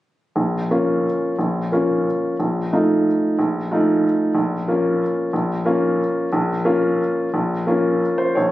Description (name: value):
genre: classical, piano waltz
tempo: 159-192 BPM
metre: 3/4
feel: rubato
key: Bb minor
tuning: A4 = 440 Hz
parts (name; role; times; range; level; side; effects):
- clear baby grand piano; solo; 0.4-8.5 s; Bb1 to Db5; -17 LUFS; equal; none
room: moderate recital hall reverb, RT60 1.8 s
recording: recorded on a phone in the room, club reverb, compression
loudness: -17 LUFS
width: side -15 dB against mid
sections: 0.4-8.4 A section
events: none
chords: 0.4 Bbm; 2.4 F7/Bb; 4.4 Bbm